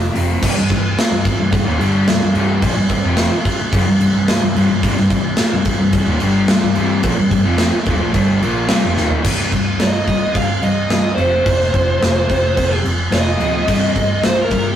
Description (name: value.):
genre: hard rock.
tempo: 109 BPM.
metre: 4/4.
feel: straight.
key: C minor.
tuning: A4 = 438 Hz.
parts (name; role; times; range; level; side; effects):
crunchy overdriven guitar; riff; 0.0-14.8 s; C2 to Bb3; -19 LUFS; left 4 dB; none.
sludgy distorted guitar; riff; 0.0-14.8 s; C2 to Bb3; -24 LUFS; right 6 dB; overdrive.
hollow-body short-scale picked electric bass; bass; 0.0-14.7 s; C1 to C2; -22 LUFS; equal; none.
big rock drum kit; drums; 0.2-14.6 s; crash cymbal, hi-hat, kick drum, snare drum, toms; -18 LUFS; equal; none.
distorted electric guitar; riff; 0.4-9.2 s; C2 to Bb3; -23 LUFS; equal; distortion.
bluesy overdriven lead guitar; melody; 9.8-14.8 s; G4 to F5; -18 LUFS; right 1 dB; distortion.
room: light reverb.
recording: rough rehearsal-room recording, warm saturation.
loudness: -13 LUFS.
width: side -10 dB against mid.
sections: 0.4-9.3 A section; 9.3-14.8 B section.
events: drum fill 9.0; lead electric guitar solo 9.3-14.8.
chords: 0.4 Cm; 11.2 F5; 13.7 Cm.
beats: | 0.42 0.97 1.53 2.08 | 2.63 3.18 3.73 4.28 | 4.83 5.39 5.94 6.49 | 7.04 7.59 8.15 8.70 | 9.25 9.81 10.36 10.91 | 11.47 12.02 12.58 13.13 | 13.69 14.24.